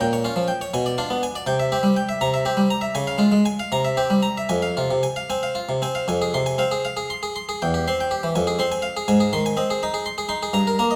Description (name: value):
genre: classical, baroque-style suite movement for harpsichord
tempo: 73-84 BPM (dotted quarters)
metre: 6/8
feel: rubato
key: F minor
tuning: A4 = 440 Hz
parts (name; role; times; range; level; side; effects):
- harpsichord; solo; 0.0-11.0 s; E2 to C6; -22 LUFS; equal; none
room: wet recital hall reverb, RT60 1.4 s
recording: close, detailed microphones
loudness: -22 LUFS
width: mono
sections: 0.0-6.1 A section; 6.1-11.0 B section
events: none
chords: 0.0 Gm7b5/Bb; 0.7 Bdim7; 1.5 C; 2.2 C7; 2.9 Db; 3.7 C7; 4.5 Fm; 7.6 C/E; 8.3 Fm; 9.1 Ab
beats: | 0.03 0.74 | 1.47 2.20 | 2.94 3.70 | 4.50 5.30 | 6.09 6.85 | 7.60 8.35 | 9.08 9.80 | 10.54